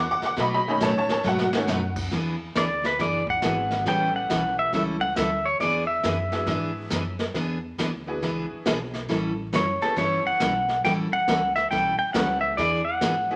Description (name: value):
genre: country, western swing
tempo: 138 BPM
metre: 4/4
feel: swing 65% on 8ths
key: E mixolydian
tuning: A4 = 440 Hz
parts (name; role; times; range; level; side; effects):
- picked steel-string acoustic guitar; accompaniment; 0.0-13.1 s; B2 to A4; -31 LUFS; equal; none
- tack piano; accompaniment; 0.0-13.4 s; D#3 to D6; -30 LUFS; equal; none
- upright bass; bass; 0.0-13.4 s; F#1 to B2; -38 LUFS; equal; none
- jazz brush drum kit; drums; 0.2-13.4 s; brushed snare drum, crash cymbal, hi-hat, kick drum, snare drum; -32 LUFS; equal; none
- pedal steel guitar; melody; 2.6-13.4 s; A4 to G5; -26 LUFS; equal; none
room: wet large studio reverb, RT60 0.9 s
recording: none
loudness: -25 LUFS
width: mono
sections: 0.0-2.1 A section; 2.1-13.4 B section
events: honky-tonk piano solo 0.0-2.1; drum fill 1.2-1.7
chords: 0.4 B9; 2.1 E9; 3.9 A9; 5.6 E9; 9.1 A9; 12.6 E9